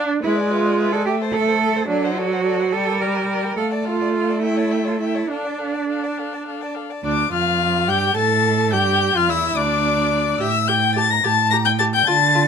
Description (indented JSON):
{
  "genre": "quick classical-period movement for string quartet",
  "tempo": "71 BPM (dotted quarters)",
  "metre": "6/8",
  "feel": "straight",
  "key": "D minor",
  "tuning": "A4 = 440 Hz",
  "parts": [
    { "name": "warm violin", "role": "melody", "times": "0.0-12.5 s", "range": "D5 to Bb6", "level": "-22 LUFS", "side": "left 8 dB", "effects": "none" },
    { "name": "rich violin", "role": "second line", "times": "0.0-12.5 s", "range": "G4 to Bb5", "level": "-26 LUFS", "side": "left 5 dB", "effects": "none" },
    { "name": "rich viola", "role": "accompaniment", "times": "0.0-12.4 s", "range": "F#3 to A4", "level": "-23 LUFS", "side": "right 1 dB", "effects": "none" },
    { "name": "rich cello", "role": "bass", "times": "0.0-12.5 s", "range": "D2 to Bb4", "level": "-22 LUFS", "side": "right 5 dB", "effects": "none" }
  ],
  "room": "light reverb",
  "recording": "none",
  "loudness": "-17 LUFS",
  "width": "side -6 dB against mid",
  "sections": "0.0-7.0 A section; 7.0-12.5 A section",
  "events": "none",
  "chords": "0.2 E7/G#; 1.1 Am; 1.9 D7/F#; 2.7 Gm; 3.6 Dm/A; 4.4 A7; 5.3 Dm; 8.7 G5; 10.4 Gm69/A",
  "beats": "| 0.23 1.06 | 1.90 2.73 | 3.58 4.43 | 5.30 6.17 | 7.04 7.89 | 8.73 9.57 | 10.41 11.24 | 12.07"
}